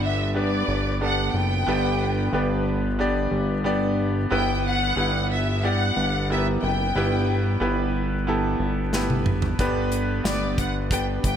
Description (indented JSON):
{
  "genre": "piano-driven pop",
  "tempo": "91 BPM",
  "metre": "4/4",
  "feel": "straight",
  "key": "E minor",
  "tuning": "A4 = 440 Hz",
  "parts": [
    { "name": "warm symphonic violin section", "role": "melody", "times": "0.0-11.4 s", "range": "D5 to G5", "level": "-27 LUFS", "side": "left 1 dB", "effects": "none" },
    { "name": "bright grand piano", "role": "accompaniment", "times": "0.0-11.4 s", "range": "G2 to D5", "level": "-25 LUFS", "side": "equal", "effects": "none" },
    { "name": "fat analog bass", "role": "bass", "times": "0.0-11.4 s", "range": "F#1 to G1", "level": "-25 LUFS", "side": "equal", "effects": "none" },
    { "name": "modern studio drum kit", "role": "drums", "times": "8.9-11.4 s", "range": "hi-hat, kick drum, snare drum, toms", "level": "-25 LUFS", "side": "equal", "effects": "gated reverb" }
  ],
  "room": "light reverb, studio reverb",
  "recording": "bright 1980s-style digital production",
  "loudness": "-21 LUFS",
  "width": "side -9 dB against mid",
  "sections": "0.0-11.4 A section",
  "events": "drum fill 8.9-9.6",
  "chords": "0.0 G; 4.3 Em; 9.6 G"
}